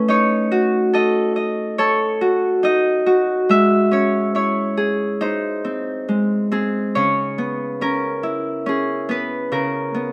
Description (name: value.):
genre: children's music, lullaby.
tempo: 70 BPM.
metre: 4/4.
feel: straight.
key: C# dorian from 7.0 s.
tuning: A4 = 440 Hz.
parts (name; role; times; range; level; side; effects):
Celtic harp; solo; 0.0-10.1 s; C#3 to E5; -19 LUFS; equal; none.
room: wet stone room reverb, RT60 1.0 s.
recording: band playing live in one room.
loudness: -19 LUFS.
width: mono.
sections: 0.0-7.0 A section; 7.0-10.1 B section.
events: none.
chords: 0.1 D#dim; 3.5 C#m/G#; 5.2 G#; 7.0 C#m7.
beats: | 0.09 0.94 1.78 2.64 | 3.49 4.35 5.21 6.09 | 6.96 7.82 8.67 9.52.